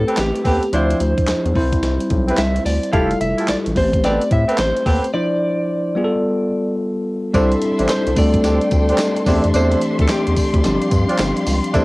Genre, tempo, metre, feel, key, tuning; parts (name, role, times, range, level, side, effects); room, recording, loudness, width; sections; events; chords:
R&B, new jack swing; 109 BPM; 4/4; swing 64% on 16ths; C major; A4 = 440 Hz
direct-recorded clean electric guitar; melody; 0.0-11.4 s; G4 to F5; -22 LUFS; equal; lush chorus
bell-like tine electric piano; accompaniment; 0.0-11.8 s; E3 to C5; -20 LUFS; left 1 dB; medium stereo tremolo
round analog bass; bass; 0.0-11.8 s; F1 to A2; -20 LUFS; equal
mellow horn section; stabs; 0.1-11.8 s; A3 to C5; -21 LUFS; right 1 dB
crisp 8-bit digital drum machine; drums; 0.1-11.8 s; handclaps, hi-hat, kick drum, snare drum, tambourine; -21 LUFS; equal
warm studio string section; sustained chords; 7.3-11.8 s; G4 to C6; -27 LUFS; left 1 dB
little or no reverb; home recording on cassette; -15 LUFS; side -21 dB against mid
0.0-7.3 A section; 7.3-11.8 B section
break 5.1-7.3
0.0 Am9; 0.7 Dm9; 1.6 Cmaj7; 2.9 Fmaj9; 3.8 Am9; 5.1 Dm9; 6.0 G9; 7.3 C69; 8.2 D7sus4; 9.3 C69/E; 10.6 G7sus4